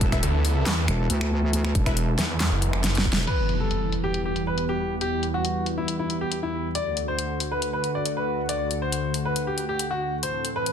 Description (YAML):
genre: heavy wobble dubstep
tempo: 138 BPM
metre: 4/4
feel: half-time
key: E minor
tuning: A4 = 438 Hz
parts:
  - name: lush unison pad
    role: sustained chords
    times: 0.0-10.7 s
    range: D2 to A4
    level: -29 LUFS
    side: equal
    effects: chorus, sidechain pumping
  - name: wobble bass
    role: bass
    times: 0.0-3.3 s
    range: E1 to D2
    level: -24 LUFS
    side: equal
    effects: chorus, overdrive
  - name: dubstep drum kit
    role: drums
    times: 0.0-10.7 s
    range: crash cymbal, finger snaps, handclaps, hi-hat, snare drum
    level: -28 LUFS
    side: left 1 dB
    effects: overdrive, low-pass filter on snare, studio reverb, low-pass filter on hats, low-pass filter on cymbals
  - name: electronic kick drum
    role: drums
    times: 0.0-3.1 s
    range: none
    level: -25 LUFS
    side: equal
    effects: studio reverb
  - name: supersaw stab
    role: stabs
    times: 0.1-1.9 s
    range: E4 to E5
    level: -34 LUFS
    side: left 3 dB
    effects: ping-pong delay
  - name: snarling distorted saw bass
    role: bass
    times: 0.2-3.1 s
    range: F#1 to E2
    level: -23 LUFS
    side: equal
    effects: distortion, overdrive
  - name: clear concert grand piano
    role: melody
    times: 3.3-10.7 s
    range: E4 to D5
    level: -27 LUFS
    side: left 1 dB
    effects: ping-pong delay
  - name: impact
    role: sound effects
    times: 3.3-5.0 s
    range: none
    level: -29 LUFS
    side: equal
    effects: none
room: light reverb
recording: dense, heavily limited modern master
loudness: -23 LUFS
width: side -8 dB against mid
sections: 0.0-3.3 A section; 3.3-10.7 B section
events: drop 0.0-3.3; drum fill 2.8-3.3; impact 3.3-5.0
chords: 0.0 Esus2; 3.3 Em; 6.8 D